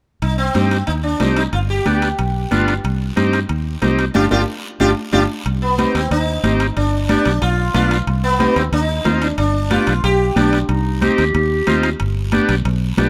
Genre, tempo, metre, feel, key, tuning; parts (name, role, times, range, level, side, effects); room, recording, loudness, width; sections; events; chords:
latin, cumbia; 184 BPM; 4/4; straight; C harmonic minor; A4 = 439 Hz
sitar; melody; 0.2-10.6 s; B3 to G4; -23 LUFS; equal
fingered electric bass; bass; 0.2-13.1 s; G1 to G2; -21 LUFS; equal
congas; percussion; 0.2-13.1 s; -25 LUFS; equal
guiro; percussion; 0.2-13.1 s; -37 LUFS; equal
timbales; percussion; 0.2-13.1 s; -30 LUFS; equal
overdriven combo organ; accompaniment; 0.5-13.1 s; B3 to G4; -23 LUFS; equal
breathy clarinet; second line; 10.7-12.0 s; Eb4 to G4; -23 LUFS; equal; slapback echo
light reverb; -17 LUFS; mono
0.2-5.5 A section; 5.5-13.1 B section
band accent 4.1-5.5; drum fill 4.5-5.5
0.2 Cm; 1.5 G7; 2.8 Cm; 4.1 G5; 5.5 Cm; 6.8 G7; 8.1 Cm; 9.4 G7; 10.7 Cm; 12.0 G